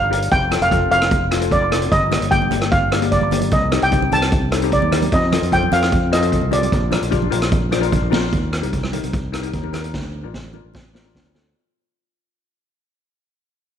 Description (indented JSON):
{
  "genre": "calypso",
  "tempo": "150 BPM",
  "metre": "4/4",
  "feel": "straight",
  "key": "Bb major",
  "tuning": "A4 = 441 Hz",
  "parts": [
    { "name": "steel pan", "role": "melody", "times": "0.0-7.9 s", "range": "D5 to A5", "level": "-19 LUFS", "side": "right 1 dB", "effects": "none" },
    { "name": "overdriven fingered electric bass", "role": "bass", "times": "0.0-11.5 s", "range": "F1 to F2", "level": "-22 LUFS", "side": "right 1 dB", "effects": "transformer saturation" },
    { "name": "steel pan", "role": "accompaniment", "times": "0.1-11.5 s", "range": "Bb3 to C5", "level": "-24 LUFS", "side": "left 10 dB", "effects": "none" },
    { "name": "street-band drum kit", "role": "drums", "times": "0.1-11.4 s", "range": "hi-hat, kick drum, rim click, snare drum", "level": "-21 LUFS", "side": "right 1 dB", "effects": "none" },
    { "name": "congas", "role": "percussion", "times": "2.1-11.4 s", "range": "none", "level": "-28 LUFS", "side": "right 13 dB", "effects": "none" }
  ],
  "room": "moderate echo chamber reverb, RT60 1.5 s, studio reverb",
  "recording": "1960s-style stereo with parts hard left and right",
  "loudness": "-15 LUFS",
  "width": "side -9 dB against mid",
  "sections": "0.0-8.3 A section; 8.3-11.5 B section",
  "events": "drum fill 7.3-8.3, 9.9-11.5; fade-out 8.3-11.5",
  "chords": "0.3 F; 1.9 Gm7; 3.5 Cm; 5.1 F7; 6.7 Bb; 8.3 Eb; 9.9 Bbmaj7"
}